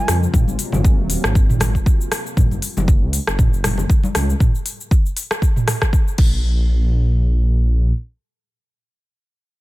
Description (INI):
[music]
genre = afro house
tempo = 118 BPM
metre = 4/4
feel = swing 56% on 16ths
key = unclear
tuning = A4 = 439 Hz
[part]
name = warm analog pad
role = sustained chords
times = 0.0-2.4 s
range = C3 to F4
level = -30 LUFS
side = right 1 dB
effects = chorus, sidechain pumping
[part]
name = dark detuned saw bass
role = bass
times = 0.1-7.9 s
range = Eb1 to F2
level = -18 LUFS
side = equal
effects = sidechain pumping
[part]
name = afro-pop drum kit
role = drums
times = 0.1-6.3 s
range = crash cymbal, hi-hat, rim click, shaker, toms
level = -22 LUFS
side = right 1 dB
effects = none
[part]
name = electronic kick drum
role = drums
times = 0.3-6.3 s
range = none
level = -15 LUFS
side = equal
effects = none
[part]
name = congas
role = percussion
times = 0.3-4.1 s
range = none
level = -26 LUFS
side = left 3 dB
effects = none
[sound]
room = digital ambience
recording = none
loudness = -15 LUFS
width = side -18 dB against mid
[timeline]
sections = 0.0-6.4 A section; 6.4-9.6 B section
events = drop 0.0-6.4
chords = 0.3 Ab13; 2.4 Gb5; 4.4 N.C.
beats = | 0.34 0.84 1.35 1.86 | 2.37 2.88 3.39 3.90 | 4.40 4.91 5.42 5.93 | 6.44 6.95 7.45